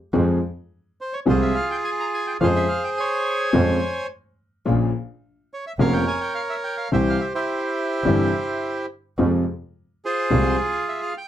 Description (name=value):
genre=tango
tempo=106 BPM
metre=4/4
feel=rubato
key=F harmonic minor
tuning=A4 = 441 Hz
part: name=dark concert grand piano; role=accompaniment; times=0.1-10.5 s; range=F1 to Ab4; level=-20 LUFS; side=left 1 dB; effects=none
part: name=clear double bass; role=bass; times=0.1-10.5 s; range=F1 to F2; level=-24 LUFS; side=right 1 dB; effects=none
part: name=bandoneon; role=melody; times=1.0-11.3 s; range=E4 to Bb5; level=-23 LUFS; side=right 1 dB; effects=none
room=moderate club reverb, RT60 0.6 s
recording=close, detailed microphones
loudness=-20 LUFS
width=side -11 dB against mid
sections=0.1-11.3 A section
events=none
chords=0.1 Fm; 2.4 Dbmaj7/F; 4.7 Bbm; 6.9 C; 9.2 Fm